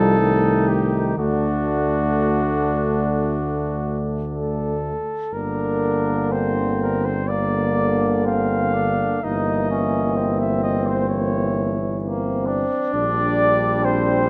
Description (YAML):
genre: classical, hymn-like piece for brass band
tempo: 56-67 BPM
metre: 4/4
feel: rubato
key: G minor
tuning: A4 = 440 Hz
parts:
  - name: dark cornet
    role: melody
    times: 0.0-14.3 s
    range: F#4 to F5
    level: -27 LUFS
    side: equal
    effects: none
  - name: warm flugelhorn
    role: second line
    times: 0.0-14.3 s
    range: Bb3 to Eb4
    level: -29 LUFS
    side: equal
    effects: none
  - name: clear trombone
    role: accompaniment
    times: 0.0-14.3 s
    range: D3 to G3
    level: -30 LUFS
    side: equal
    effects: none
  - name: warm euphonium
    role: accompaniment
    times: 0.0-14.3 s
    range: G3 to D4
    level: -28 LUFS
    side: equal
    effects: none
  - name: warm tuba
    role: bass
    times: 0.0-14.3 s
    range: G1 to D2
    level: -26 LUFS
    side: equal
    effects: none
room: moderate recital hall reverb, RT60 1.4 s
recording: none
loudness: -21 LUFS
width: mono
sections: 0.0-14.3 A section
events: none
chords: 0.0 Adim/C; 1.2 D; 5.3 Gm; 9.2 Gdim7; 12.9 Gm/Bb